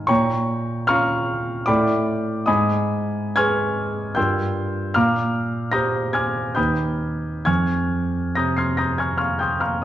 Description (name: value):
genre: classical, impressionist solo piano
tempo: 63-78 BPM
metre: 3/4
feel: rubato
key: unclear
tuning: A4 = 440 Hz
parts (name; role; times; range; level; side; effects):
- warm concert grand piano; solo; 0.0-9.8 s; Eb2 to C7; -19 LUFS; equal; none
room: wet recital hall reverb, RT60 1.5 s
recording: dark, warm production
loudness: -19 LUFS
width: side -12 dB against mid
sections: 0.0-9.8 A section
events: none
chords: 0.1 Bbm; 1.7 A5; 2.5 Abm; 4.2 Gm7; 5.0 Bb13; 6.6 Ebaug; 7.5 Fm11